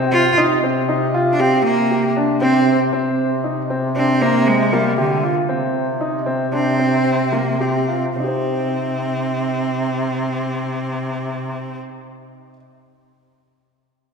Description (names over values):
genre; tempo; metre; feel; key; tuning
contemporary instrumental, chamber music in an uneven meter; 209-235 BPM (eighths); 5/8; straight; C minor; A4 = 439 Hz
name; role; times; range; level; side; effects
warm baby grand piano; arpeggios; 0.0-12.5 s; Bb3 to C5; -20 LUFS; equal; none
breathy bass clarinet; bass; 0.0-11.8 s; C3; -23 LUFS; left 3 dB; none
bright cello; melody; 0.1-11.8 s; D3 to F4; -20 LUFS; right 2 dB; none
room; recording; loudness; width
wet church reverb, RT60 2.6 s; recorded in a church or concert hall; -16 LUFS; side -5 dB against mid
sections
0.0-2.9 A section; 2.9-8.2 B section; 8.2-11.0 C section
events
slowing down 5.5-8.2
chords
0.0 Ab/C (rootless); 1.6 Csus2; 2.9 N.C.; 8.2 Cm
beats
0.12 | 0.38 0.63 0.89 1.14 1.40 | 1.65 1.91 2.16 2.42 2.67 | 2.93 3.18 3.44 3.69 3.95 | 4.21 4.46 4.72 4.97 5.23 | 5.49 5.74 6.00 6.26 6.53 | 6.79 7.06 7.33 7.60 7.88 | 8.16 8.45 8.73 9.02 9.31 | 9.59 9.88 10.16 10.45 10.74